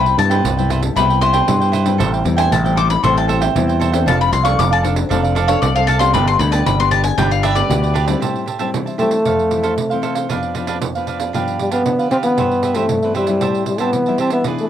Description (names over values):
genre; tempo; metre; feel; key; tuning
samba and choro; 116 BPM; 4/4; straight; A minor from 8.2 s; A4 = 441 Hz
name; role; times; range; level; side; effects
bowl-back mandolin; second line; 0.0-8.0 s; Db5 to D6; -18 LUFS; left 9 dB; none
cavaquinho; accompaniment; 0.0-14.7 s; D4 to A5; -21 LUFS; right 8 dB; none
nylon-string guitar; accompaniment; 0.0-14.7 s; F2 to A4; -23 LUFS; left 8 dB; none
growling fingered electric bass; bass; 0.0-8.1 s; F1 to G2; -17 LUFS; equal; overdrive
pandeiro; percussion; 0.1-14.7 s; none; -23 LUFS; right 7 dB; none
breathy trombone; melody; 9.0-14.7 s; G3 to C4; -16 LUFS; equal; cassette tape
room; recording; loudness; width
light reverb; home recording on cassette; -14 LUFS; side -10 dB against mid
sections
0.0-8.2 A section; 8.2-14.7 B section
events
mandolin solo 0.0-8.2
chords
0.0 Cmaj7; 2.0 Am7; 4.1 F6; 6.1 G; 8.2 Am7; 9.3 Fmaj7; 10.3 Bdim/F; 11.3 G7; 12.4 Cmaj7/G; 13.4 Am7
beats
0.45 0.97 1.49 | 2.00 2.52 3.04 3.56 | 4.07 4.59 5.11 5.62 | 6.14 6.66 7.18 7.70 | 8.22 8.74 9.26 9.78 | 10.30 10.82 11.34 11.86 | 12.38 12.90 13.42 13.94 | 14.46